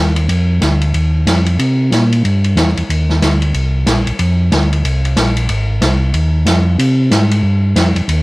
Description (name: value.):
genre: soul jazz organ trio.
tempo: 185 BPM.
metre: 4/4.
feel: swing 61% on 8ths.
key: C minor.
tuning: A4 = 441 Hz.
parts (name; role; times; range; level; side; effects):
mellow tonewheel organ; bass; 0.0-8.2 s; Ab1 to C3; -13 LUFS; equal; chorus vibrato, slow rotary speaker, transformer saturation.
open jazz drum kit; drums; 0.2-8.2 s; hi-hat, ride cymbal, snare drum; -16 LUFS; equal; cassette tape.
room: light reverb.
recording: home recording on cassette.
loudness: -11 LUFS.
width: side -22 dB against mid.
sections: 0.0-8.2 A section.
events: none.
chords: none.